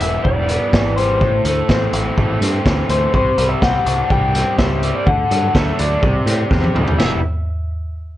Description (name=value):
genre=indie rock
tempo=125 BPM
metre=4/4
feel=straight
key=E minor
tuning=A4 = 437 Hz
part: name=electric guitar through a small old amp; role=melody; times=0.0-7.2 s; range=C5 to G5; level=-20 LUFS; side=left 3 dB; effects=analog delay
part: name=raw garage guitar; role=riff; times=0.0-7.2 s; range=A2 to E4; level=-21 LUFS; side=equal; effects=overdrive
part: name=growling picked electric bass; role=bass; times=0.0-7.2 s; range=E1 to A2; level=-20 LUFS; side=equal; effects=overdrive
part: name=vintage drum kit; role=drums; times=0.0-7.1 s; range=crash cymbal, hi-hat, kick drum, snare drum, toms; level=-19 LUFS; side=equal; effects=none
room=light reverb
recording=worn, warbling old tape, cassette tape, warbly pitch drift, nothing above 10.7 kHz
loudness=-14 LUFS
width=side -14 dB against mid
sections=0.0-7.0 A section; 7.0-8.2 B section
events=drum fill 6.5-7.0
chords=0.0 Em; 1.2 Am; 3.1 Csus2; 5.1 D; 6.0 Csus2; 7.0 Em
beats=0.25 0.73 | 1.22 1.70 2.18 2.66 | 3.14 3.62 4.10 4.58 | 5.07 5.55 6.03 6.51 | 6.99